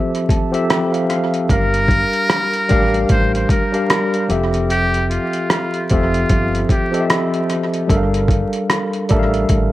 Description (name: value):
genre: lo-fi hip hop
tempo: 75 BPM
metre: 4/4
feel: swing 60% on 16ths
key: G dorian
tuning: A4 = 437 Hz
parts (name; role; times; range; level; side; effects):
- tine electric piano; accompaniment; 0.0-9.7 s; F3 to A5; -18 LUFS; equal; medium stereo tremolo, cassette tape, low-pass filter
- dusty soul sampler-style drum kit; drums; 0.1-9.7 s; hi-hat, kick drum, rim click; -18 LUFS; equal; overdrive
- trumpet with metal mute; melody; 1.5-7.1 s; F4 to C5; -21 LUFS; equal; low-pass filter, tape echo
- deep dub fingered electric bass; bass; 1.5-9.7 s; F1 to A1; -21 LUFS; equal; none
room: moderate spring reverb, RT60 2.0 s, digital ambience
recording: echo-heavy mix, vinyl crackle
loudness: -14 LUFS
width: side -16 dB against mid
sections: 0.0-9.7 A section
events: break 0.0-1.5; tine electric piano fill 0.0-1.5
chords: 0.0 Fmaj9; 1.5 Gm9; 4.3 Fmaj9; 7.9 Gm9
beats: 0.69 | 1.49 2.29 3.09 3.89 | 4.69 5.49 6.29 7.09 | 7.89 8.69 9.49